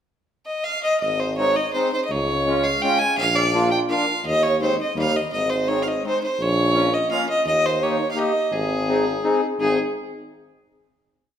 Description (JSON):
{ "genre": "alpine folk, alpine dance band", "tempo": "167 BPM", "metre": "3/4", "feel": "straight", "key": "Ab major", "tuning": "A4 = 440 Hz", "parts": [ { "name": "clear fiddle", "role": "melody", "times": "0.5-9.8 s", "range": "Ab4 to Ab5", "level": "-21 LUFS", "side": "right 1 dB", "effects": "none" }, { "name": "clear tuba", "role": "bass", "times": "1.0-9.8 s", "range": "Ab1 to Eb2", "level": "-25 LUFS", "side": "equal", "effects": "none" }, { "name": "accordion", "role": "accompaniment", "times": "1.4-9.8 s", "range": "G3 to Ab4", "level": "-24 LUFS", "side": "left 2 dB", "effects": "none" } ], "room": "wet recital hall reverb, RT60 1.6 s", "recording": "minimal, uncompressed stereo recording", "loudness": "-19 LUFS", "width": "side -9 dB against mid", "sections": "0.0-1.0 pickup bar; 1.0-9.6 A section; 9.6-10.7 final chord", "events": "none", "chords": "0.0 N.C.; 1.0 Ab; 2.1 Db; 3.2 Bb; 4.2 Ab/Eb; 5.0 Eb; 5.3 Ab; 6.4 Bbm; 7.5 Eb; 8.5 Ab" }